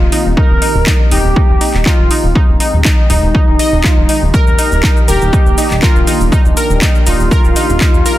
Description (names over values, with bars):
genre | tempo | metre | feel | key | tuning
progressive house | 121 BPM | 4/4 | straight | Eb major | A4 = 439 Hz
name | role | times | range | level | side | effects
expressive synth lead | melody | 0.0-8.2 s | Eb4 to Bb4 | -18 LUFS | equal | wide subtle chorus, sidechain pumping, dub echo
lush unison pad | sustained chords | 0.0-8.2 s | Eb3 to G4 | -22 LUFS | right 1 dB | chorus, phaser, sidechain pumping
plucky analog bass | bass | 0.0-8.0 s | Eb1 | -14 LUFS | equal | sidechain pumping
analog pluck | arpeggios | 0.1-8.2 s | Eb4 to Eb5 | -19 LUFS | left 1 dB | chorus, sidechain pumping, dub echo
house drum kit | drums | 0.1-8.2 s | cabasa, handclaps, hi-hat | -19 LUFS | equal | overdrive
electronic kick drum | drums | 0.4-7.9 s | none | -11 LUFS | equal | overdrive
room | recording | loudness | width
digital ambience | dense, heavily limited modern master | -9 LUFS | side -14 dB against mid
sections
0.0-8.2 A section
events
filter sweep on analog synth pad 0.0-8.2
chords
0.4 Cm7/Eb; 2.4 Abmaj7/Eb; 4.3 Ebmaj7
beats
| 0.37 0.87 1.36 1.86 | 2.35 2.85 3.35 3.84 | 4.34 4.83 5.33 5.83 | 6.32 6.82 7.31 7.81